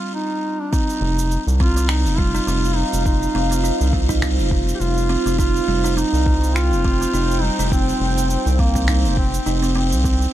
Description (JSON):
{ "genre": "organic downtempo", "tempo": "103 BPM", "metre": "4/4", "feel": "swing 56% on 16ths", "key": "unclear", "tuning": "A4 = 439 Hz", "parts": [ { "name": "mellow duduk", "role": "melody", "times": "0.0-10.3 s", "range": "Bb3 to G4", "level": "-24 LUFS", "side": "right 1 dB", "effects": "digital delay" }, { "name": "buzzing kalimba", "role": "arpeggios", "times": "0.7-10.3 s", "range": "G3 to Eb4", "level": "-24 LUFS", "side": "right 2 dB", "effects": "digital delay" }, { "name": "electronic cabasa and finger snaps", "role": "drums", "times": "0.7-10.3 s", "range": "none", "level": "-29 LUFS", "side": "right 1 dB", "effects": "none" }, { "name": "electronic kick drum", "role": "drums", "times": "0.7-10.2 s", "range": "none", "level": "-21 LUFS", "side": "equal", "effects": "none" }, { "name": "warbly tape-like pad", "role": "sustained chords", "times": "0.9-10.3 s", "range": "G3 to G5", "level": "-27 LUFS", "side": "right 2 dB", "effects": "chorus, built-in reverb, phaser, sidechain pumping" }, { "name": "round analog bass", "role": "bass", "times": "1.0-10.3 s", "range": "F1 to C2", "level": "-20 LUFS", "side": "equal", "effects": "none" } ], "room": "little or no reverb", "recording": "none", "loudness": "-16 LUFS", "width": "side -13 dB against mid", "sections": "0.7-10.3 A section", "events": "break 0.0-0.7", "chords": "0.0 N.C.; 0.7 F5" }